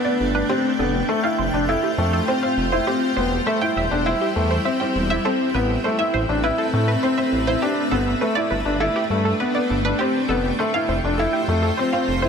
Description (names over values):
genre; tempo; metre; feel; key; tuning
piano and strings electronica; 101 BPM; 4/4; straight; unclear; A4 = 439 Hz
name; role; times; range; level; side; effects
granular cloud pad; sustained chords; 0.0-12.3 s; G3 to G5; -24 LUFS; equal; built-in reverb
analog pluck; arpeggios; 0.0-12.3 s; G4 to G5; -26 LUFS; right 2 dB; chorus, phaser, ping-pong delay
felt-muted upright piano; riff; 0.1-12.3 s; A3 to E4; -22 LUFS; left 1 dB; ping-pong delay
dark detuned saw bass; bass; 0.2-12.3 s; E1 to A2; -24 LUFS; equal; none
room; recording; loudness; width
moderate lush hall reverb, RT60 2.5 s; none; -18 LUFS; side -6 dB against mid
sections
0.0-12.3 A section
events
none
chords
0.5 Fadd9; 2.9 C/E; 5.2 Amadd9; 7.6 Gadd9; 10.0 Fadd9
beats
| 0.50 1.09 1.69 2.28 | 2.87 3.47 4.06 4.66 | 5.25 5.84 6.44 7.03 | 7.63 8.22 8.81 9.41 | 10.00 10.60 11.19 11.79